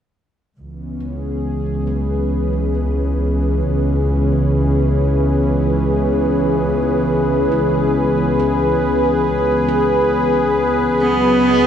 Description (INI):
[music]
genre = ambient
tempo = 69 BPM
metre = 3/4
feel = straight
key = C# minor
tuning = A4 = 440 Hz
[part]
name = warm analog pad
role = sustained chords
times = 0.6-11.7 s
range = E3 to D#5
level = -16 LUFS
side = left 1 dB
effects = chorus
[part]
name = dark studio double bass section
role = bass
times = 0.6-11.7 s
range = C#2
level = -20 LUFS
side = right 1 dB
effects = none
[part]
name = handpan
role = arpeggios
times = 1.0-11.2 s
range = E3 to B4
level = -30 LUFS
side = right 2 dB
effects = none
[part]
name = rich cello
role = melody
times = 11.0-11.7 s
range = B3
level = -15 LUFS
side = right 2 dB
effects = none
[sound]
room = moderate concert hall reverb, RT60 1.9 s, small room reverb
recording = none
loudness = -15 LUFS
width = side -9 dB against mid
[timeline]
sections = 0.6-11.7 A section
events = none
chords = 0.6 C#m7; 11.0 G#m7/C#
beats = | 0.57 1.44 2.31 | 3.17 4.04 4.91 | 5.78 6.65 7.52 | 8.39 9.26 10.13 | 11.00